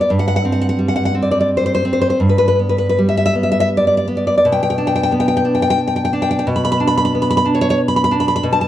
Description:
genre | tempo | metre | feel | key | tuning
romantic piece for solo classical guitar | 71-92 BPM | 3/4 | rubato | G major | A4 = 440 Hz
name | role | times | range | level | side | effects
nylon-string guitar | solo | 0.0-8.7 s | G2 to B5 | -13 LUFS | equal | slapback echo
room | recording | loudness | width
light reverb | dark, warm production, tape saturation | -13 LUFS | side -12 dB against mid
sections
0.0-8.7 A section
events
none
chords
0.1 Gsus4; 2.2 G; 4.4 G/B

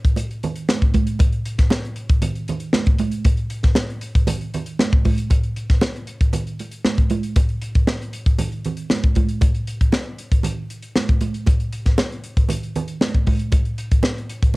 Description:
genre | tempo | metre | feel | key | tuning
funk | 117 BPM | 4/4 | straight | none | none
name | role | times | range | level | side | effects
crisp fusion drum kit | drums | 0.0-14.5 s | hi-hat, kick drum, snare drum | -18 LUFS | equal | cassette tape
congas | percussion | 0.2-14.6 s | none | -25 LUFS | right 4 dB | none
room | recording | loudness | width
little or no reverb | home recording on cassette | -18 LUFS | side -22 dB against mid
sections
0.0-5.3 A section; 5.3-14.6 B section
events
none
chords
none

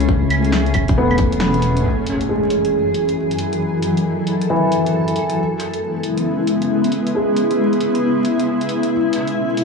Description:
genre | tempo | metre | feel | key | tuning
future garage | 136 BPM | 4/4 | swing 65% on 16ths | F# minor | A4 = 440 Hz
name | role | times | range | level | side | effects
dark upright piano | accompaniment | 0.0-8.9 s | E3 to E4 | -21 LUFS | equal | vintage 12-bit sampler grit, sidechain pumping, analog delay
granular cloud pad | sustained chords | 0.0-9.6 s | F#2 to A4 | -18 LUFS | left 1 dB | built-in reverb, sidechain pumping
dark detuned saw bass | bass | 0.0-1.8 s | E1 to C#2 | -18 LUFS | left 1 dB | none
garage drum kit | drums | 0.0-9.6 s | claves, hi-hat, snare drum | -27 LUFS | right 1 dB | vintage 12-bit sampler grit
electronic kick drum | drums | 0.1-1.3 s | none | -18 LUFS | equal | vintage 12-bit sampler grit
impact | sound effects | 1.8-3.6 s | none | -26 LUFS | equal | none
room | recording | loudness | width
light reverb | dry, gritty hardware recording, transformer saturation, vinyl crackle, small room reverb | -16 LUFS | side -4 dB against mid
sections
0.0-1.9 A section; 1.9-9.6 B section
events
kick drops out 1.4-1.9; band accent 1.4; impact 1.9-3.6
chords
0.0 Amaj7; 1.9 F#m9; 5.4 C#m7; 8.9 B9sus4

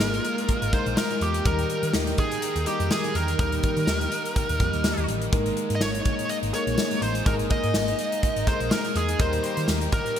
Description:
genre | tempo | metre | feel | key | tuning
1980s-style pop | 124 BPM | 4/4 | swing 55% on 16ths | unclear | A4 = 439 Hz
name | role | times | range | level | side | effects
smooth overdriven lead guitar | melody | 0.0-10.2 s | G4 to Eb5 | -28 LUFS | right 1 dB | digital delay
clear concert grand piano | accompaniment | 0.0-10.2 s | G3 to Bb4 | -31 LUFS | left 4 dB | wide subtle chorus
scooped high-gain guitar | accompaniment | 0.0-10.2 s | Eb3 to Ab4 | -38 LUFS | equal | distortion, wide subtle chorus
chorused pulse-width pad | sustained chords | 0.0-10.2 s | Eb3 to G5 | -32 LUFS | equal | none
hollow-body short-scale picked electric bass | bass | 0.0-9.9 s | Ab1 to Eb3 | -28 LUFS | equal | none
modern studio drum kit | drums | 0.0-10.2 s | hi-hat, kick drum, snare drum, tambourine | -26 LUFS | equal | gated reverb
room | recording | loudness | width
moderate lush hall reverb, RT60 2.0 s, studio reverb | bright 1980s-style digital production | -22 LUFS | side -9 dB against mid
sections
0.0-10.2 A section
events
none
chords
0.0 Absus2; 1.5 Eb; 5.3 Absus2; 9.2 Eb

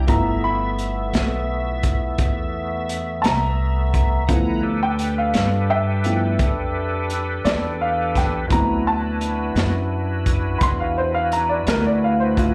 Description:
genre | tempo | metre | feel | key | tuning
slow blues | 57 BPM (dotted quarters) | 12/8 | straight | G mixolydian | A4 = 440 Hz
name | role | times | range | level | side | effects
warm upright piano | accompaniment | 0.0-12.5 s | F3 to C6 | -26 LUFS | equal | slapback echo
bright tonewheel organ | sustained chords | 0.0-12.5 s | A3 to Bb5 | -29 LUFS | equal | slow rotary speaker, chorus vibrato
upright bass | bass | 0.0-12.5 s | G1 to G2 | -25 LUFS | equal | none
crunchy breakbeat drum kit | drums | 0.1-12.5 s | hi-hat, kick drum, snare drum | -24 LUFS | equal | none
room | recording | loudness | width
light reverb | live gig heard through the venue's PA, club reverb | -21 LUFS | mono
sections
0.0-12.5 A section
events
upright piano solo 0.0-12.5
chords
0.1 G13; 8.5 D13

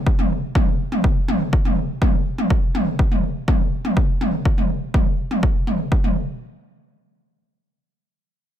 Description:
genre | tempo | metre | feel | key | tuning
melodic techno | 123 BPM | 4/4 | straight | none | none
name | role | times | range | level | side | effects
electronic kick drum | drums | 0.1-6.0 s | none | -19 LUFS | equal | none
electronic toms | drums | 0.2-6.1 s | none | -22 LUFS | equal | sidechain pumping on toms, sidechain pumping on hats
room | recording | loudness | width
little or no reverb | none | -18 LUFS | side -10 dB against mid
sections
0.0-6.4 A section; 6.4-8.6 B section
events
none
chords
none

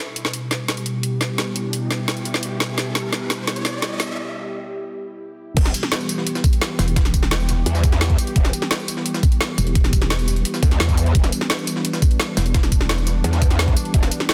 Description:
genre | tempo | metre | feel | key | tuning
dark technical drum and bass | 172 BPM | 4/4 | straight | E minor | A4 = 440 Hz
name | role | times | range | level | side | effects
sweeping resonant pad | sustained chords | 0.0-14.3 s | B2 to G4 | -29 LUFS | equal | subtle chorus, sidechain pumping
riser | sound effects | 0.0-4.2 s | none | -37 LUFS | equal | none
drum and bass drum kit | drums | 0.2-14.3 s | crash cymbal, hi-hat, snare drum, tambourine | -26 LUFS | equal | overdrive, studio reverb
growl bass | bass | 5.6-8.5, 10.6-14.1 s | E1 to E2 | -22 LUFS | equal | chorus, tube saturation
electronic kick drum | drums | 5.6-14.0 s | none | -19 LUFS | equal | studio reverb
jungle sampler-style drum kit | drums | 5.6-14.3 s | hi-hat, snare drum | -34 LUFS | equal | overdrive, high-pass filter on hats, studio reverb, high-pass filter on snare
pulsing pluck wobble bass | bass | 6.8-13.2 s | E1 | -23 LUFS | equal | chorus
room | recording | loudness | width
light reverb, digital ambience | dense, heavily limited modern master, high-pass filter | -20 LUFS | mono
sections
0.0-5.6 A section; 5.6-14.3 B section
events
build-up 0.0-5.6; drum fill 0.0-4.2; riser 0.0-4.2; filter sweep 0.0-5.6; break 4.2-5.6; drop 5.6-14.3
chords
0.0 Em

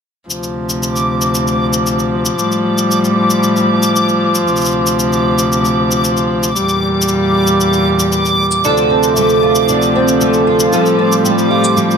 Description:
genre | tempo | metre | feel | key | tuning
folktronica | 115 BPM | 4/4 | straight | D minor | A4 = 439 Hz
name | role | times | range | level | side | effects
warm string quartet | sustained chords | 0.3-12.0 s | D2 to G3 | -14 LUFS | left 1 dB | none
shaker | drums | 0.3-12.0 s | none | -21 LUFS | left 3 dB | none
backwards swelling texture | texture | 0.9-12.0 s | D6 | -18 LUFS | right 1 dB | built-in reverb
fingerpicked twelve-string acoustic guitar | arpeggios | 8.6-12.0 s | D3 to A4 | -12 LUFS | right 2 dB | analog chorus, digital delay
room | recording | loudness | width
light reverb | none | -11 LUFS | side -6 dB against mid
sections
0.3-12.0 A section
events
none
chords
0.3 Dm7; 2.4 Fadd9; 4.5 Dm7; 6.6 Edim; 8.6 Dm7; 10.7 Fadd9

